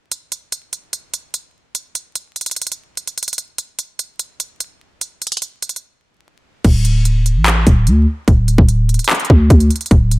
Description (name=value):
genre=hip hop, trap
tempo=147 BPM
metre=4/4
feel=half-time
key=unclear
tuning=A4 = 442 Hz
part: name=trap drum kit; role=drums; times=0.1-10.2 s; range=crash cymbal, handclaps, hi-hat, kick drum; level=-15 LUFS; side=equal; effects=none
part: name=growling 808-style bass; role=bass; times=6.6-10.2 s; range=D1 to D2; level=-12 LUFS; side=equal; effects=none
room=little or no reverb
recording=dense, heavily limited modern master, vinyl crackle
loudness=-14 LUFS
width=side -21 dB against mid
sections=0.1-6.6 A section; 6.6-10.2 B section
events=break 5.8-6.6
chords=none